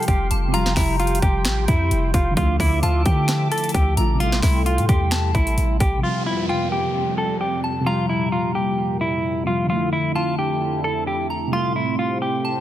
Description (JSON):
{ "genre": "hip hop, trap", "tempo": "131 BPM", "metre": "4/4", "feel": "half-time", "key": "F major", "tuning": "A4 = 440 Hz", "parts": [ { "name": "clean electric guitar", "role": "melody", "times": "0.0-12.6 s", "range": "E4 to A4", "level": "-24 LUFS", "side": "equal", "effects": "tape echo" }, { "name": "soft synth bell", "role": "second line", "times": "0.0-12.6 s", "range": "G5 to C6", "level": "-31 LUFS", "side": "equal", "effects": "chorus, phaser, tape echo" }, { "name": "warbly lo-fi synth keys", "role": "accompaniment", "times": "0.0-12.6 s", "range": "C3 to G4", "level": "-26 LUFS", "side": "equal", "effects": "chorus" }, { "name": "sweeping resonant pad", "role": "sustained chords", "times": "0.0-12.6 s", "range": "F2 to D6", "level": "-29 LUFS", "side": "equal", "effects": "chorus" }, { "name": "trap drum kit", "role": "drums", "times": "0.0-5.9 s", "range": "finger snaps, hi-hat, kick drum, snare drum", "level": "-22 LUFS", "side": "equal", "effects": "overdrive" }, { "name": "warm 808-style bass", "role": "bass", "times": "0.1-6.0 s", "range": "F1 to D3", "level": "-21 LUFS", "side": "equal", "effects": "none" }, { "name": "downlifter and reverse cymbal", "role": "sound effects", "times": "6.0-12.6 s", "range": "none", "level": "-33 LUFS", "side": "equal", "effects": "none" } ], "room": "light reverb, digital ambience", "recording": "dense, heavily limited modern master", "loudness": "-18 LUFS", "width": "side -12 dB against mid", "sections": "0.0-6.0 A section; 6.0-12.6 B section", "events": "none", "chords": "0.0 Fsus2; 2.4 Dmadd9; 4.2 Am7; 6.0 Fsus2; 9.7 Dmadd9; 11.5 Am7", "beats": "0.08 | 0.54 1.00 1.45 1.91 | 2.37 2.83 3.29 3.74 | 4.20 4.66 5.12 5.58 | 6.03 6.49 6.95 7.41 | 7.87 8.32 8.78 9.24 | 9.70 10.16 10.61 11.07 | 11.53 11.99 12.45" }